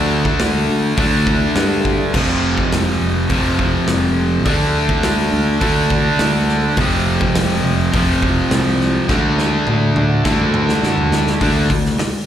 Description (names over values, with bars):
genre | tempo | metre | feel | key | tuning
hard rock | 104 BPM | 4/4 | straight | D minor | A4 = 440 Hz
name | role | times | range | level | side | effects
cranked stack guitar | riff | 0.0-12.0 s | F2 to D4 | -17 LUFS | equal | overdrive, slapback echo
overdriven picked electric bass | bass | 0.0-12.0 s | F1 to G2 | -18 LUFS | equal | none
big rock drum kit | drums | 0.3-12.1 s | crash cymbal, hi-hat, kick drum, snare drum, toms | -21 LUFS | equal | none
room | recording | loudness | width
little or no reverb | live gig heard through the venue's PA, recital hall reverb | -14 LUFS | side -10 dB against mid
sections
0.0-11.4 A section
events
drum fill 9.1-11.4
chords
0.0 D5; 2.1 F5; 4.5 D5; 6.8 F5; 9.1 D5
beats
0.40 0.98 1.56 | 2.14 2.72 3.30 3.88 | 4.46 5.04 5.62 6.20 | 6.78 7.36 7.94 8.52 | 9.09 9.67 10.25 10.83 | 11.41 11.99